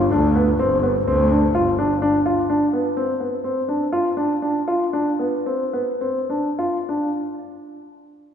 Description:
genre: contemporary instrumental, chamber music in an uneven meter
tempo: 95-126 BPM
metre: 5/4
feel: straight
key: G mixolydian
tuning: A4 = 440 Hz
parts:
  - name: warm baby grand piano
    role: arpeggios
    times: 0.0-7.1 s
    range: B3 to F4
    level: -19 LUFS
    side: left 1 dB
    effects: none
  - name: clear double bass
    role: bass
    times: 0.0-2.0 s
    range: G1 to D2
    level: -21 LUFS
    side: right 1 dB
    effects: none
room: wet concert hall reverb, RT60 2.3 s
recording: recorded in a church or concert hall, nothing above 11.0 kHz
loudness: -18 LUFS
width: side -8 dB against mid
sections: 0.0-7.2 A section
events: slowing down 3.0-7.2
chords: 0.0 G7sus4

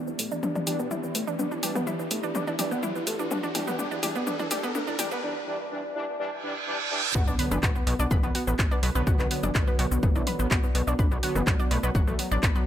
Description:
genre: melodic techno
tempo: 125 BPM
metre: 4/4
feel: straight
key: B minor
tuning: A4 = 441 Hz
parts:
  - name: fat analog lead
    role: melody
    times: 0.0-12.6 s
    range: E3 to F#4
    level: -33 LUFS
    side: equal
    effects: chorus, sidechain pumping, digital delay
  - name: dark analog pad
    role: sustained chords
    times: 0.0-12.7 s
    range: B3 to D5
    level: -38 LUFS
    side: equal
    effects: chorus, phaser, sidechain pumping
  - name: analog pluck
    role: arpeggios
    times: 0.0-12.6 s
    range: B3 to B5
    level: -33 LUFS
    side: equal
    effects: chorus, sidechain pumping, tape echo
  - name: riser, reverse cymbal and impact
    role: sound effects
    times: 0.0-9.1 s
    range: none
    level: -34 LUFS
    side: right 2 dB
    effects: none
  - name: techno drum kit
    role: drums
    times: 0.1-12.6 s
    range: handclaps, hi-hat, shaker, toms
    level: -31 LUFS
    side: left 1 dB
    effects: sidechain pumping on toms, sidechain pumping on hats, sidechain pumping on perc
  - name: analog synth brass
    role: stabs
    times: 0.7-11.3 s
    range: D3 to D4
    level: -34 LUFS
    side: right 1 dB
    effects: chorus, sidechain pumping, tape echo
  - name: gritty driven synth bass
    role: bass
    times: 7.1-12.5 s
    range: F#1 to B1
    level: -28 LUFS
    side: equal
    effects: sidechain pumping
  - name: electronic kick drum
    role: drums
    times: 7.2-12.5 s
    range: none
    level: -25 LUFS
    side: equal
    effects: none
room: light reverb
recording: high-pass filter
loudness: -24 LUFS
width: side -11 dB against mid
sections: 0.0-7.2 A section; 7.2-12.7 B section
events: build-up 0.0-7.2; drum fill 0.0-5.2; riser 0.0-5.2; filter sweep on synth arpeggio sound 0.0-7.2; filter sweep on analog synth lead 0.0-7.2; filter sweep on analog polysynth 0.0-7.2; filter sweep 0.0-7.2; reverse cymbal 6.4-7.2; drop 7.2-12.7; impact 7.2-9.1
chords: 0.0 Em7; 7.2 Bm

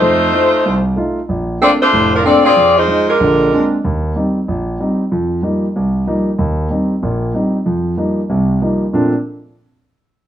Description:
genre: jazz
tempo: 188 BPM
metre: 4/4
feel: swing 64% on 8ths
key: Bb major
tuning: A4 = 438 Hz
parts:
  - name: mellow saxophone section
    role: melody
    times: 0.0-3.7 s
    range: F3 to D5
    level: -11 LUFS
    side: left 1 dB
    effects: none
  - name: dark concert grand piano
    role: accompaniment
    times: 0.0-9.1 s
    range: F1 to F4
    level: -15 LUFS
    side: right 1 dB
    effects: none
room: moderate large studio reverb, RT60 0.8 s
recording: worn, warbling old tape, cassette tape, warbly pitch drift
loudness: -12 LUFS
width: side -10 dB against mid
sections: 0.0-3.8 A section; 3.8-8.9 B section; 8.9-10.2 C section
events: none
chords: 0.0 F7; 1.3 Bbmaj9; 2.6 Fm7; 3.2 Bb9; 3.8 Eb6; 5.1 F9sus4; 6.4 Eb6; 7.7 F9sus4; 8.9 Bbmaj9

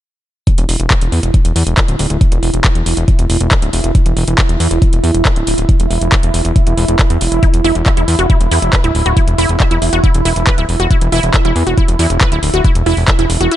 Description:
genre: psychedelic trance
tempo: 138 BPM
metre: 4/4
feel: straight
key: unclear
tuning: A4 = 441 Hz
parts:
  - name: bubbling stepped-filter texture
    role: sustained chords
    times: 0.7-13.6 s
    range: E4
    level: -20 LUFS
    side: right 3 dB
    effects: chorus, built-in reverb, sidechain pumping
  - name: electronic kick drum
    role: drums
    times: 0.5-13.2 s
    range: none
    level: -12 LUFS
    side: equal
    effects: none
  - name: garage drum kit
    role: drums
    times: 0.5-13.6 s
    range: handclaps, hi-hat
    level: -19 LUFS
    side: equal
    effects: none
  - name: fat analog bass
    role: bass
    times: 0.6-13.5 s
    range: D1 to E2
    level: -15 LUFS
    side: equal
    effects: none
  - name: wide unison pluck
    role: riff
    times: 7.4-13.6 s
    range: E4 to E5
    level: -18 LUFS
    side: right 1 dB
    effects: auto-pan, sidechain pumping, ping-pong delay
room: little or no reverb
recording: nothing above 11.0 kHz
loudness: -10 LUFS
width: side -12 dB against mid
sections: 0.5-13.6 A section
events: none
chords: 0.5 E5

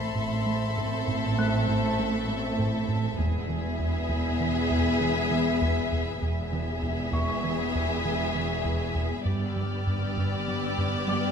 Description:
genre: cinematic, suspense film score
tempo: 99 BPM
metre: 5/4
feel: straight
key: unclear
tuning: A4 = 440 Hz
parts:
  - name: warm studio violin section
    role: melody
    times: 0.0-11.3 s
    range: D5 to E5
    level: -33 LUFS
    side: left 2 dB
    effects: none
  - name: rich studio violin section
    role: second line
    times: 0.0-11.3 s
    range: G4 to A4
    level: -34 LUFS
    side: left 2 dB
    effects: none
  - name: dark symphonic viola section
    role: accompaniment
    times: 0.0-11.3 s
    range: B3 to C4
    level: -33 LUFS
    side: left 1 dB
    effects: none
  - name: rubbery square bass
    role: riff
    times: 0.0-11.3 s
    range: E2 to A3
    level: -31 LUFS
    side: right 1 dB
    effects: none
  - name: dark studio cello section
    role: bass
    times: 0.0-11.3 s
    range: E2 to A2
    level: -32 LUFS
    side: right 1 dB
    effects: none
  - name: warm studio double bass section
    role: bass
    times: 0.0-11.3 s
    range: E1 to A1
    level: -33 LUFS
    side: right 2 dB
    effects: none
  - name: felt-muted upright piano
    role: texture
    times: 0.0-11.3 s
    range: D5 to F#6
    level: -39 LUFS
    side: left 2 dB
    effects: none
  - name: rich studio violin section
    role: texture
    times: 0.0-2.9, 9.3-11.3 s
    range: A5 to E#6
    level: -38 LUFS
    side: left 4 dB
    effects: none
room: wet scoring stage reverb, RT60 2.1 s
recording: minimal, uncompressed stereo recording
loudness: -25 LUFS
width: side -7 dB against mid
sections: 0.0-11.3 A section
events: none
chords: 0.0 Am; 3.2 E; 9.3 G

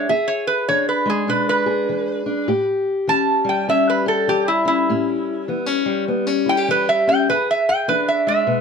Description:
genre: acoustic country blues, solo or duo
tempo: 100 BPM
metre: 4/4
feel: swing 62% on 8ths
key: unclear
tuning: A4 = 440 Hz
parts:
  - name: metal-body resonator slide guitar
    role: melody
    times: 0.0-8.6 s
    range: E4 to A5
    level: -18 LUFS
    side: right 2 dB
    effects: none
  - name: fingerpicked steel-string acoustic guitar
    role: accompaniment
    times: 0.0-8.6 s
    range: E2 to G#4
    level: -21 LUFS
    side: left 3 dB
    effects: none
room: light reverb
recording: close, detailed microphones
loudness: -17 LUFS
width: side -6 dB against mid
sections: 0.0-8.6 A section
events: resonator guitar played with a steel bar solo 0.0-8.6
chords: 0.0 E7; 2.5 A7; 7.3 E7

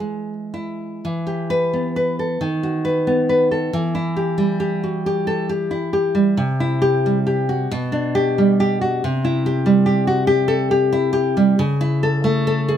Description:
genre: romantic piece for solo classical guitar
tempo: 37-49 BPM (dotted quarters)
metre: 6/8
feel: rubato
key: E minor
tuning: A4 = 445 Hz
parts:
  - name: nylon-string guitar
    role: solo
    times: 0.0-12.8 s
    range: B2 to B4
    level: -17 LUFS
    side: equal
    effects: none
room: moderate large studio reverb, RT60 1.0 s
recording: band playing live in one room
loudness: -17 LUFS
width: side -9 dB against mid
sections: 0.0-1.0 A section; 1.0-12.8 B section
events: none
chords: 0.0 E; 1.0 Em; 2.4 B/D#; 3.7 Em; 6.4 C; 7.7 G/B; 9.0 C; 11.6 A/C#

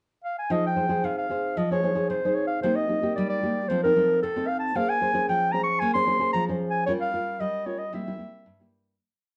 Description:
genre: samba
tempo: 113 BPM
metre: 4/4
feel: straight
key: F minor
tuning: A4 = 440 Hz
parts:
  - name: mellow clarinet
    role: melody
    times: 0.2-8.7 s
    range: A4 to Db6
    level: -27 LUFS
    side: equal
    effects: none
  - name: nylon-string guitar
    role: accompaniment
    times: 0.5-9.0 s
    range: G2 to C5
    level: -30 LUFS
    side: equal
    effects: none
room: wet studio reverb, RT60 0.6 s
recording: heard from further back in the room, nothing above 10.9 kHz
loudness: -25 LUFS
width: mono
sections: 0.0-0.5 pickup bar; 0.5-9.0 groove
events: fade-out 6.9-9.0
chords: 0.0 N.C.; 0.5 Fm7; 2.6 Cm7; 3.7 F7; 4.8 Bbm9; 6.9 Gm7b5; 7.9 C7

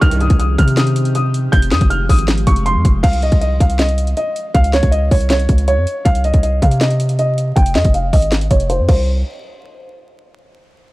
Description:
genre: hip hop, trap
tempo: 159 BPM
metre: 4/4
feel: half-time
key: C phrygian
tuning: A4 = 440 Hz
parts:
  - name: dark baby grand piano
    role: melody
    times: 0.0-9.1 s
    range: C5 to G6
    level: -19 LUFS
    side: equal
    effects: low-pass filter
  - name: glassy FM pad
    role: sustained chords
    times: 0.1-3.0 s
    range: Eb3 to G4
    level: -25 LUFS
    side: left 2 dB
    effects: ensemble chorus, built-in reverb
  - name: hard-hitting 808-style bass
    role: bass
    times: 0.0-9.2 s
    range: F1 to C3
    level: -16 LUFS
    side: equal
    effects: none
  - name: trap drum kit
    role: drums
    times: 0.0-9.0 s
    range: crash cymbal, hi-hat, kick drum, snare drum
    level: -15 LUFS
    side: equal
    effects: none
room: little or no reverb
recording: vinyl crackle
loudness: -12 LUFS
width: side -19 dB against mid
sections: 0.0-3.0 A section; 3.0-9.1 B section; 9.1-10.6 C section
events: filter sweep on grand piano 3.0-9.1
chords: 0.0 Cm; 1.5 Fmadd9; 3.0 Cm; 4.5 N.C.; 6.1 Cm; 7.6 Fm; 8.9 N.C.

